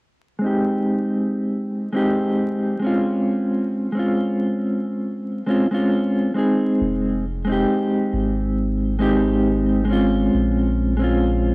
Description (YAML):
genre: trip hop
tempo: 68 BPM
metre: 4/4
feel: swing 55% on 16ths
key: F minor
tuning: A4 = 440 Hz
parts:
  - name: mellow electric guitar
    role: accompaniment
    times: 0.4-11.5 s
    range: Ab3 to Ab4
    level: -18 LUFS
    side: equal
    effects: tremolo, low-pass filter, cassette tape, tape echo
  - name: soft dub sub bass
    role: bass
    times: 6.8-11.5 s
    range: F1 to Bb1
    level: -23 LUFS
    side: equal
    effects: none
room: moderate spring reverb, RT60 1.8 s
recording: home recording on cassette, vinyl crackle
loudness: -18 LUFS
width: side -26 dB against mid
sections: 0.0-6.8 A section; 6.8-11.5 B section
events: filter sweep on clean electric guitar 0.0-6.8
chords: 0.0 Fm7; 3.3 Dbmaj9/Ab; 6.8 Fm7; 10.3 Bbm7